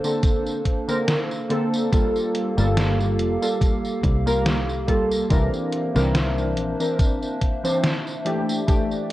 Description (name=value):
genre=vaporwave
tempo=71 BPM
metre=4/4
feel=swing 55% on 16ths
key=unclear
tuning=A4 = 440 Hz
part: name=warbly lo-fi synth keys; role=accompaniment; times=0.0-9.1 s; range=D3 to C5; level=-23 LUFS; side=equal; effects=lush chorus, analog delay
part: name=warbly tape-like pad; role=sustained chords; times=0.0-9.1 s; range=A3 to F5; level=-29 LUFS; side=equal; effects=chorus, built-in reverb
part: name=detuned 8-bit digital drum machine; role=drums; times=0.0-9.1 s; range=hi-hat, snare drum, tambourine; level=-28 LUFS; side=equal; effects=none
part: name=electronic kick drum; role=drums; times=0.2-8.9 s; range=none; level=-21 LUFS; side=equal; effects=none
part: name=fingered electric bass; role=bass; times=2.6-6.7 s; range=F1 to C2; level=-23 LUFS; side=equal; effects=none
room=light reverb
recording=worn, warbling old tape, cassette tape, warbly pitch drift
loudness=-20 LUFS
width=side -16 dB against mid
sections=0.0-9.1 A section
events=none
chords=0.0 Bbmaj9; 1.9 Gm9; 5.3 C9; 8.3 Fmaj13 (rootless)